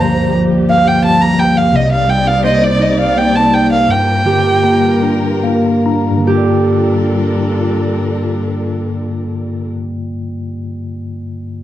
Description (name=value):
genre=acoustic folk-pop ballad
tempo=46-58 BPM (dotted quarters)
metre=6/8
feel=straight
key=G minor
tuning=A4 = 440 Hz
part: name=dark violin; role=melody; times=0.0-5.5 s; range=D5 to Bb5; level=-14 LUFS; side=right 1 dB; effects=none
part: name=mellow tine electric piano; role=accompaniment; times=0.0-11.6 s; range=C2 to Bb5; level=-15 LUFS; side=left 1 dB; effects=medium stereo tremolo
part: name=dark chamber string section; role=sustained chords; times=0.0-9.7 s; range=G2 to D5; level=-20 LUFS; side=left 1 dB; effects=none
part: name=concert harp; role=arpeggios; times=0.0-9.7 s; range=G4 to F5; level=-20 LUFS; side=right 4 dB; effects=none
room=wet large studio reverb, RT60 1.0 s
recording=dark, warm production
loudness=-11 LUFS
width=side -12 dB against mid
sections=0.0-6.3 A section; 6.3-11.4 B section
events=slowing down 1.7-6.3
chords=0.0 Gm7; 1.7 Cm7; 3.9 Gm7